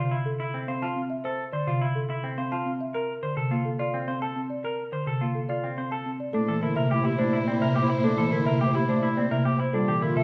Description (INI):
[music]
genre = classical, minimalist pattern music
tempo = 106 BPM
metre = 3/4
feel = straight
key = unclear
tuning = A4 = 440 Hz
[part]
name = buzzing marimba with soft mallets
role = accompaniment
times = 0.0-10.2 s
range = C3 to C4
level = -30 LUFS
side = equal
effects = none
[part]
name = clean electric guitar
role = arpeggios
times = 0.0-10.2 s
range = C4 to C5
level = -34 LUFS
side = equal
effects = none
[part]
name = folk marimba with soft mallets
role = melody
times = 0.3-10.2 s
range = G4 to A5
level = -34 LUFS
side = equal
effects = none
[part]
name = warm clarinet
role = second line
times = 6.3-10.2 s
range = E4 to F4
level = -35 LUFS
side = equal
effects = none
[part]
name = rich studio violin section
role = sustained chords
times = 6.3-10.2 s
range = E4 to C5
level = -38 LUFS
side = equal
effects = none
[part]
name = rich cello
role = bass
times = 6.3-10.2 s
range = Bb2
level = -32 LUFS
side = equal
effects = none
[sound]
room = moderate recital hall reverb, RT60 1.5 s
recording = dark, warm production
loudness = -27 LUFS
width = mono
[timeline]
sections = 0.0-6.3 A section; 6.3-10.2 B section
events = none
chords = 0.0 Dmadd9 (rootless); 2.9 Bbmaj7; 6.3 C13/Bb